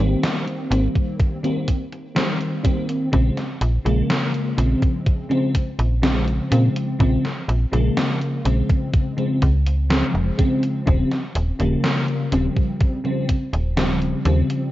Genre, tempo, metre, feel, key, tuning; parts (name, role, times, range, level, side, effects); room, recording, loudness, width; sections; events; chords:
vaporwave; 62 BPM; 4/4; straight; Bb dorian; A4 = 440 Hz
FM electric piano with soft pad layer; accompaniment; 0.0-14.7 s; Db3 to C4; -22 LUFS; equal; ensemble chorus, tape echo
slap-like FM bass; bass; 0.0-14.4 s; Eb1 to Bb2; -19 LUFS; equal
gated 80s digital drum machine; drums; 0.2-14.7 s; hi-hat, snare drum; -25 LUFS; equal; gated reverb, gated reverb snare, studio reverb
electronic kick drum; drums; 1.0-13.5 s; -19 LUFS; equal; studio reverb
light reverb; cassette tape, nothing above 7.7 kHz; -18 LUFS; side -15 dB against mid
0.0-14.7 A section
0.0 Abmaj9 (rootless); 3.1 Bbm9; 10.9 Eb13